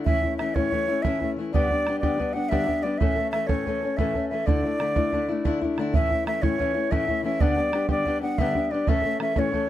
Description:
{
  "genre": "celtic folk, Celtic slip jig",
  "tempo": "123 BPM (dotted quarters)",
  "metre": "9/8",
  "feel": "straight",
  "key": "unclear",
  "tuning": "A4 = 440 Hz",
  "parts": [
    { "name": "bright baroque flute", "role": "melody", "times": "0.0-9.7 s", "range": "C#5 to F#5", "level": "-26 LUFS", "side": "equal", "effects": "none" },
    { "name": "fingerpicked old ladder-braced acoustic guitar", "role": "accompaniment", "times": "0.0-9.7 s", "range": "G2 to A4", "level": "-26 LUFS", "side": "left 3 dB", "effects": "none" },
    { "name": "bodhran", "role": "percussion", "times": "0.1-9.6 s", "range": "none", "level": "-26 LUFS", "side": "right 2 dB", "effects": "none" }
  ],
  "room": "light reverb",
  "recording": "close, detailed microphones",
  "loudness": "-22 LUFS",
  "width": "side -12 dB against mid",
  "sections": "0.0-5.9 A section; 5.9-9.7 A section",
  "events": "none",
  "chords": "0.1 A; 1.5 G; 3.0 A; 4.5 Dsus2; 5.9 A; 7.4 G; 8.9 A"
}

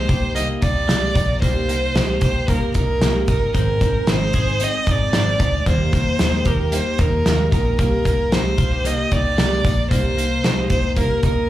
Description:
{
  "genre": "jangly indie pop",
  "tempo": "113 BPM",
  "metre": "4/4",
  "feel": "straight",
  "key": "C minor",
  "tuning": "A4 = 440 Hz",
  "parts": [
    { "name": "clear violin", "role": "melody", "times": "0.0-11.5 s", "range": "Bb4 to Eb5", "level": "-22 LUFS", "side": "right 2 dB", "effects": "slapback echo" },
    { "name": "fingerpicked steel-string acoustic guitar", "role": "accompaniment", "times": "0.0-11.5 s", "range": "Ab2 to Ab4", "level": "-27 LUFS", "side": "right 3 dB", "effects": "slapback echo" },
    { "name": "twelve-string electric guitar", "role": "arpeggios", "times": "0.0-11.5 s", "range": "Bb3 to Ab4", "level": "-28 LUFS", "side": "left 7 dB", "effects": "slapback echo" },
    { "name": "vintage muted picked electric bass", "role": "bass", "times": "0.0-11.4 s", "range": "G1 to Eb2", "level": "-21 LUFS", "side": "equal", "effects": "none" },
    { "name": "loose indie drum kit", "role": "drums", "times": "0.1-11.4 s", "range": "hi-hat, kick drum, snare drum", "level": "-21 LUFS", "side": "equal", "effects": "none" }
  ],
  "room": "studio reverb",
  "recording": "live gig heard through the venue's PA, club reverb, vinyl crackle",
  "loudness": "-16 LUFS",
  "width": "side -14 dB against mid",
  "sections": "0.0-11.5 A section",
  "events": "none",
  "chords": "0.0 Cm7; 3.5 Ab; 5.7 Eb; 7.8 Cm7"
}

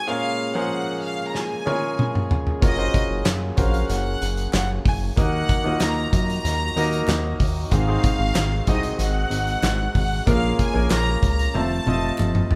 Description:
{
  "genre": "piano-driven pop",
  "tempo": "94 BPM",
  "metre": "4/4",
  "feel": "straight",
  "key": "Bb minor",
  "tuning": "A4 = 440 Hz",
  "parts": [
    { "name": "warm studio violin section", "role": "melody", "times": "0.0-12.5 s", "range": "Eb5 to Bb5", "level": "-30 LUFS", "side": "equal", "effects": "none" },
    { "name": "clear baby grand piano", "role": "accompaniment", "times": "0.0-12.6 s", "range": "Ab2 to Eb5", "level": "-29 LUFS", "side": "equal", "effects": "none" },
    { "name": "mellow French horn section", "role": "sustained chords", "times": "0.0-12.6 s", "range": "C3 to Ab4", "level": "-36 LUFS", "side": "equal", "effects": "none" },
    { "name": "loose indie drum kit", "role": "drums", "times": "1.3-12.6 s", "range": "handclaps, hi-hat, kick drum, snare drum, toms", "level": "-25 LUFS", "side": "equal", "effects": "none" },
    { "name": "chorused synth bass", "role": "bass", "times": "2.6-12.6 s", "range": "F1 to Gb2", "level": "-27 LUFS", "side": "equal", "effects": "none" },
    { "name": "group handclap", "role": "percussion", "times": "3.3-12.3 s", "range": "none", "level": "-43 LUFS", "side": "equal", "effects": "none" }
  ],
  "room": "light reverb",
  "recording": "band playing live in one room",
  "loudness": "-22 LUFS",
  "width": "mono",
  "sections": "0.0-12.6 A section",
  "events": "drum fill 1.4-2.6, 11.5-12.6",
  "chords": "0.1 Bbm7; 2.6 Gbmaj7; 5.2 Ebm; 7.7 Ab7; 10.3 Bbm7; 11.5 F"
}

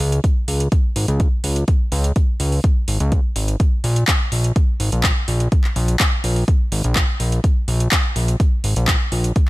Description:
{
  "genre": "progressive house",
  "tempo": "125 BPM",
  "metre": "4/4",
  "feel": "straight",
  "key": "Bb minor",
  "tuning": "A4 = 445 Hz",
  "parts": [
    { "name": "fat analog bass", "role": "bass", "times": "0.0-9.3 s", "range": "Ab1 to Db2", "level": "-18 LUFS", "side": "equal", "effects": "sidechain pumping" },
    { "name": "deep house drum kit", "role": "drums", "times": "0.0-9.5 s", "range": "handclaps, hi-hat", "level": "-23 LUFS", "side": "equal", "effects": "overdrive, sidechain pumping on hats, studio ambience" },
    { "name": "electronic kick drum", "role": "drums", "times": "0.2-9.5 s", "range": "none", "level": "-17 LUFS", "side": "equal", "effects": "overdrive, studio ambience" }
  ],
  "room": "little or no reverb",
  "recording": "none",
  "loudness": "-16 LUFS",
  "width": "side -19 dB against mid",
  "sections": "0.0-9.5 A section",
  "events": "none",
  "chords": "none"
}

